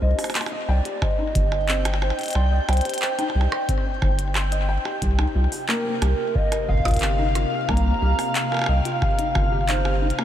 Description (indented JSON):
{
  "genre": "IDM",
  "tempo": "90 BPM",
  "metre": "4/4",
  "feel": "straight",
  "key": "C minor",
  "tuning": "A4 = 439 Hz",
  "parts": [
    { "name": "warbly nostalgic lead", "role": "melody", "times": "0.0-10.2 s", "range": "Bb4 to Bb5", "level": "-28 LUFS", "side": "right 1 dB", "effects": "lush chorus, ping-pong delay" },
    { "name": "felt-muted upright piano", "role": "arpeggios", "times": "0.0-10.2 s", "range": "Bb3 to C6", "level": "-30 LUFS", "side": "left 3 dB", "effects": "analog delay" },
    { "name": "round analog bass", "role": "bass", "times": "0.0-10.1 s", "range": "G1 to C2", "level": "-21 LUFS", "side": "equal", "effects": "none" },
    { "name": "glitchy drum kit", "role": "drums", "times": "0.2-10.2 s", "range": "handclaps, hi-hat, percussion blips", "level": "-29 LUFS", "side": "right 2 dB", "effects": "ping-pong delay" },
    { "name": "glassy FM pad", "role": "sustained chords", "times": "1.5-10.2 s", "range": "C3 to G5", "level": "-30 LUFS", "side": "equal", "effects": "ensemble chorus, built-in reverb, sidechain pumping" },
    { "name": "electronic kick drum", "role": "drums", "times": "1.0-9.5 s", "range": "none", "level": "-25 LUFS", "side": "equal", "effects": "none" }
  ],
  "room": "moderate huge ambient reverb, RT60 9.2 s",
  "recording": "dreamy mix soaked in reverb",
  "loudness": "-20 LUFS",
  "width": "side -11 dB against mid",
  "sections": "0.0-10.2 A section",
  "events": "none",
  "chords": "0.0 Cm; 5.0 Ebadd9"
}